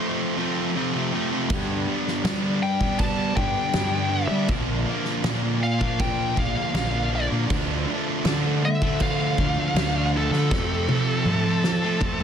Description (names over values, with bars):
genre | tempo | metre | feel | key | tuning
quiet-loud alternative rock | 80 BPM | 4/4 | straight | unclear | A4 = 438 Hz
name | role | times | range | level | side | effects
thick fuzz guitar | riff | 0.0-12.2 s | F2 to D4 | -26 LUFS | equal | distortion
fuzz fingered electric bass | bass | 1.5-12.2 s | Bb1 to G3 | -26 LUFS | equal | overdrive
loose indie drum kit | drums | 1.5-12.2 s | crash cymbal, kick drum, snare drum, toms | -27 LUFS | right 1 dB | none
high-gain lead guitar | melody | 2.6-12.2 s | A4 to A5 | -27 LUFS | left 2 dB | distortion, analog delay
room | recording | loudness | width
light reverb | dense, heavily limited modern master | -21 LUFS | side -8 dB against mid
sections
0.0-12.2 A section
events
drum fill 10.5-12.2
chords
0.0 F; 1.5 G; 4.5 Bb; 7.5 Dm; 10.5 F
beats
0.01 0.76 | 1.50 2.25 3.00 3.75 | 4.50 5.25 6.00 6.75 | 7.50 8.25 9.00 9.75 | 10.50 11.26 12.01